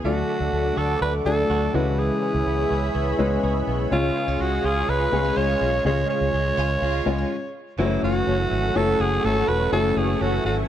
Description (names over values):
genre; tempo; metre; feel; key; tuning
pop; 124 BPM; 4/4; straight; F# minor; A4 = 436 Hz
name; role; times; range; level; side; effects
raspy alto saxophone; melody; 0.0-10.6 s; E4 to C#5; -25 LUFS; right 1 dB; plate reverb, tape echo
warm studio violin section; second line; 0.0, 6.6-7.3 s; E#4 to G#4; -36 LUFS; right 1 dB; plate reverb, tape echo
warm baby grand piano; accompaniment; 0.0-10.7 s; C#3 to D5; -27 LUFS; left 5 dB; none
lush unison pad; sustained chords; 0.5-10.7 s; G#4 to D6; -30 LUFS; equal; chorus, plate reverb
direct-recorded clean electric guitar; riff; 0.0-10.7 s; E3 to G#4; -32 LUFS; right 8 dB; ensemble chorus
mellow synth brass; stabs; 0.0-10.3 s; F#3 to C#5; -30 LUFS; equal; chorus, plate reverb, tape echo
vintage muted fingered electric bass; bass; 0.0-10.6 s; E1 to D2; -26 LUFS; right 1 dB; none
crunchy overdriven guitar; accompaniment; 7.8-10.7 s; F#2 to F#3; -34 LUFS; left 1 dB; none
room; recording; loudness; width
moderate small room reverb, RT60 0.5 s; none; -20 LUFS; side -10 dB against mid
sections
0.0-7.8 A section; 7.8-10.7 B section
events
stop 7.3-7.8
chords
0.0 D; 1.7 C#m7; 3.9 C#; 7.8 F#m7